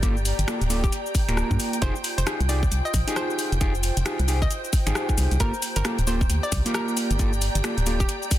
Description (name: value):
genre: UK garage, two-step garage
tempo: 134 BPM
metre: 4/4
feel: swing 61% on 16ths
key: G phrygian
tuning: A4 = 440 Hz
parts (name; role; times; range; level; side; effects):
- soft string machine; sustained chords; 0.0-8.4 s; G5; -35 LUFS; equal; phaser, ensemble chorus, sidechain pumping
- mellow electric guitar; stabs; 0.0-8.0 s; Bb3 to Bb4; -30 LUFS; equal; tape echo
- organ-like FM bass; bass; 0.0-8.0 s; D1 to G2; -24 LUFS; equal; none
- electronic kick drum; drums; 0.0-8.4 s; none; -24 LUFS; equal; none
- garage drum kit; drums; 0.0-8.4 s; finger snaps, hi-hat, rim click, shaker; -29 LUFS; left 2 dB; soft clipping on snare
- airy breathy pad; texture; 0.0-8.4 s; F4 to Bb5; -35 LUFS; equal; chorus, sidechain pumping
- hollow square pluck; melody; 0.8-8.2 s; G4 to Eb5; -34 LUFS; equal; chorus, cassette tape, dub echo
room: light reverb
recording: dense, heavily limited modern master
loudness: -21 LUFS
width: side -13 dB against mid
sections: 0.0-8.4 A section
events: none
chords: 0.0 Gm9; 1.8 Fm9; 5.4 Gm9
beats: | 0.03 0.48 0.93 1.37 | 1.82 2.27 2.72 3.16 | 3.61 4.06 4.51 4.95 | 5.40 5.85 6.30 6.75 | 7.19 7.64 8.09